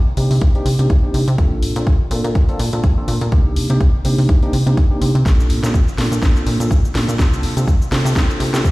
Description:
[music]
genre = filtered disco house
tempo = 124 BPM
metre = 4/4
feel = swing 56% on 16ths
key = C dorian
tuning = A4 = 443 Hz
[part]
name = plucky analog bass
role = bass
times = 0.0-8.7 s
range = Bb1 to C3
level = -17 LUFS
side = equal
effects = sidechain pumping, low-pass filter
[part]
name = tine electric piano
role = accompaniment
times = 0.2-8.6 s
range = Bb3 to A4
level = -23 LUFS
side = equal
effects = overdrive, phaser, sidechain pumping, low-pass filter
[part]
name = house drum kit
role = drums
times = 0.2-8.7 s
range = cabasa, hi-hat, snare drum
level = -25 LUFS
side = equal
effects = overdrive, sidechain pumping on perc, studio reverb, sidechain pumping on hats
[part]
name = electronic kick drum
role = drums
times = 0.4-8.7 s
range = none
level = -15 LUFS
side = equal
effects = overdrive, studio reverb
[sound]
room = digital ambience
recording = played on a big sound system in a bare room, stone room reverb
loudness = -14 LUFS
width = side -20 dB against mid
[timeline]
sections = 0.0-8.7 A section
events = build-up 0.0-8.7; filter sweep 0.0-8.7; drum fill 5.3-8.7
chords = 0.0 Cm9; 1.4 Bbmaj9; 3.3 Cm9; 5.3 Bbmaj9; 7.2 Csus2

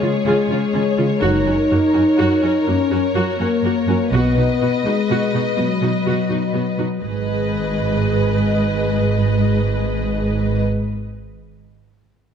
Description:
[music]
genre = cinematic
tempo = 83 BPM (dotted quarters)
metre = 12/8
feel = straight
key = G# minor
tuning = A4 = 440 Hz
[part]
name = rich symphonic violin section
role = second line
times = 0.0-10.6 s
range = G#4 to D#5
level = -24 LUFS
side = left 4 dB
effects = none
[part]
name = rich symphonic viola section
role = accompaniment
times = 0.0-10.6 s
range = A#3 to B4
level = -25 LUFS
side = right 2 dB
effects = none
[part]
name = mellow French horn section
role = sustained chords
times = 0.0-10.6 s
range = F#3 to D#4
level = -20 LUFS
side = left 3 dB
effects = none
[part]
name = rich symphonic cello section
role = bass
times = 0.0-10.6 s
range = F#2 to C#3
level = -23 LUFS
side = right 3 dB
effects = none
[part]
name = rich symphonic double bass section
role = bass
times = 1.2-10.6 s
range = F#1 to B1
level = -21 LUFS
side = right 4 dB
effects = none
[sound]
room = wet scoring stage reverb, RT60 1.8 s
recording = dark, warm production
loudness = -16 LUFS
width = side -7 dB against mid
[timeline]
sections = 0.0-7.0 A section; 7.0-9.9 B section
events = none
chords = 0.0 C#; 1.2 F#; 4.1 B; 7.0 G#m

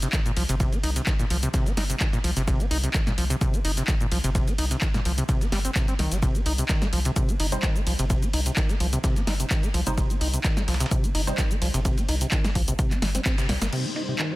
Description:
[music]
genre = acid house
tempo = 128 BPM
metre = 4/4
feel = swing 53% on 16ths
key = C minor pentatonic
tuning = A4 = 440 Hz
[part]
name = acid bass, saw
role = riff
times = 0.0-14.4 s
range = Bb2 to Eb4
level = -29 LUFS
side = equal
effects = overdrive, tape echo
[part]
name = round analog bass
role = bass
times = 0.0-13.7 s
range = G1 to C2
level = -26 LUFS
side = equal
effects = tube saturation, sidechain pumping
[part]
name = dusty soul sampler-style drum kit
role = drums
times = 0.0-14.3 s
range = ride cymbal, snare drum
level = -39 LUFS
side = right 2 dB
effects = overdrive, sidechain pumping on cymbals, high-pass filter on cymbals, low-pass filter on cymbals, high-pass filter on snare, low-pass filter on snare, high-pass filter on room, low-pass filter on room
[part]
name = punchy analog drum machine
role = drums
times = 0.0-14.3 s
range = crash cymbal, handclaps, hi-hat, shaker, snare drum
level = -29 LUFS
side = equal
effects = none
[part]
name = electronic kick drum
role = drums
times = 0.1-13.4 s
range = none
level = -25 LUFS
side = equal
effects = none
[part]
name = filtered dub chord stab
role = stabs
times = 7.5-11.4 s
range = G3 to C5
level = -34 LUFS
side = right 2 dB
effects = phaser, lush chorus, tape echo
[part]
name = string machine, full ensemble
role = sustained chords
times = 13.7-14.4 s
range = G3 to C5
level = -32 LUFS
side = left 1 dB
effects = ensemble chorus, sidechain pumping
[sound]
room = little or no reverb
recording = dense, heavily limited modern master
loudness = -22 LUFS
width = side -19 dB against mid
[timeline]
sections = 0.0-13.7 A section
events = band accent 13.3; drum fill 13.5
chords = 0.0 Cm

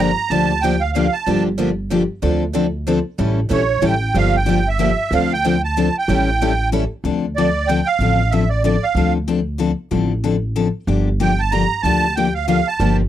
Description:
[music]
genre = acoustic string swing (jazz manouche)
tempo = 187 BPM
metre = 3/4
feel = swing 61% on 8ths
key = D minor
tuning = A4 = 440 Hz
[part]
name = musette accordion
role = melody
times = 0.0-1.4, 3.5-9.1, 11.2-13.0 s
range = C#5 to Bb5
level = -19 LUFS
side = right 5 dB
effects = none
[part]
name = picked steel-string acoustic guitar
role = accompaniment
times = 0.0-13.0 s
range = D3 to A4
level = -19 LUFS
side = left 6 dB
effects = none
[part]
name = picked steel-string acoustic guitar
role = accompaniment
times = 0.0-6.8, 12.8-13.0 s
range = D3 to A4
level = -24 LUFS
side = right 7 dB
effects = none
[part]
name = upright bass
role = bass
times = 0.0-13.1 s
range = G1 to D2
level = -21 LUFS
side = right 1 dB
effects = none
[sound]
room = little or no reverb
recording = dry, close 1970s-style studio recording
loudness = -16 LUFS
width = side -11 dB against mid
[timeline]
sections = 0.0-7.0 A section; 7.0-13.1 A section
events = none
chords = 0.0 Gm7; 2.2 Dm7; 3.2 A7; 4.1 Gm7; 5.1 Dm7; 6.1 A7; 7.0 Dm7; 10.9 Gm7

